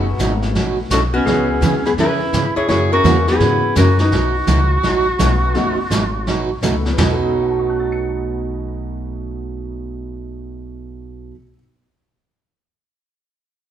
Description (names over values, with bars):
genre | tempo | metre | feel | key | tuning
country, western swing | 168 BPM | 4/4 | swing 65% on 8ths | B mixolydian | A4 = 442 Hz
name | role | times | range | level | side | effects
honky-tonk upright piano | accompaniment | 0.0-11.6 s | B2 to C#7 | -25 LUFS | left 4 dB | none
picked steel-string acoustic guitar | accompaniment | 0.0-11.4 s | B2 to G#4 | -21 LUFS | right 5 dB | none
upright bass | bass | 0.0-11.3 s | F#1 to G#2 | -21 LUFS | equal | none
vintage brush drum kit | drums | 0.2-7.3 s | brushed snare drum, hi-hat, snare drum, toms | -23 LUFS | left 1 dB | none
archtop guitar, miked and amplified | melody | 0.9-6.6 s | B3 to C#5 | -19 LUFS | left 4 dB | none
bright clarinet | second line | 0.9-6.6 s | C#4 to G#4 | -20 LUFS | right 2 dB | none
room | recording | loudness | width
moderate large studio reverb, RT60 1.1 s | band playing live in one room | -14 LUFS | side -10 dB against mid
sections
0.0-7.0 A section; 7.0-9.8 B section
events
none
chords
0.0 B9; 1.3 C#m7; 2.7 F#9; 4.1 B9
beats
0.19 0.54 0.90 | 1.26 1.62 1.97 2.33 | 2.69 3.05 3.40 3.76 | 4.12 4.48 4.83 5.19 | 5.55 5.91 6.27 6.62 | 6.98 7.34 7.70 8.05 | 8.41 8.77 9.13 9.48